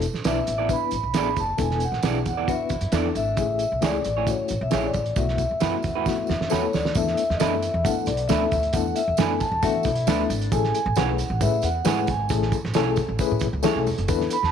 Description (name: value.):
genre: uptempo 1960s-style soul.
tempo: 134 BPM.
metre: 4/4.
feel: straight.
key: E mixolydian.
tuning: A4 = 440 Hz.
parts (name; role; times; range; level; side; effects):
reed electric piano; accompaniment; 0.0-14.4 s; A3 to B4; -27 LUFS; left 10 dB; overdrive, fast tremolo.
upright bass; bass; 0.0-14.5 s; E1 to E3; -28 LUFS; equal; none.
cloth-damped thuddy drum kit; drums; 0.0-14.5 s; hi-hat, kick drum, snare drum; -27 LUFS; right 4 dB; none.
tambourine; percussion; 0.0-14.4 s; none; -40 LUFS; right 12 dB; none.
vibraphone with soft mallets; melody; 0.3-14.5 s; C#5 to B5; -26 LUFS; equal; none.
electric guitar through a small old amp; stabs; 0.3-13.8 s; A3 to D5; -30 LUFS; right 12 dB; none.
mellow electric guitar; riff; 2.5-3.4, 9.6-10.5 s; D4 to F#4; -33 LUFS; left 13 dB; none.
room: light reverb.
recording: 1960s-style stereo with parts hard left and right.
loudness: -21 LUFS.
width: side -8 dB against mid.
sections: 0.0-7.0 A section; 7.0-14.5 B section.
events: drum fill 6.1-7.0.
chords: 0.0 E7sus4; 3.4 Amaj7; 5.2 B7sus4; 7.0 E7sus4; 10.5 Amaj7.